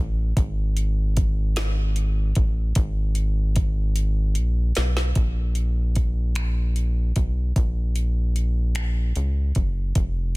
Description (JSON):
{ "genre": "slow six-eight R&B", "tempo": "50 BPM (dotted quarters)", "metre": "6/8", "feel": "straight", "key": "Bb minor", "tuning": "A4 = 440 Hz", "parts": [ { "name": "rubbery square bass", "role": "bass", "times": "0.0-10.4 s", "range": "F1 to Db2", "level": "-22 LUFS", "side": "equal", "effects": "none" }, { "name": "smooth R&B drum kit", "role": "drums", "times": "0.4-10.1 s", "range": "finger snaps, hi-hat, kick drum, snare drum", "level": "-24 LUFS", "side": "equal", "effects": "soft clipping on snare" } ], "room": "little or no reverb", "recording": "dense, heavily limited modern master", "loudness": "-20 LUFS", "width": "side -24 dB against mid", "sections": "0.0-5.2 A section; 5.2-10.4 B section", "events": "drum fill 4.0-5.2", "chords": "none" }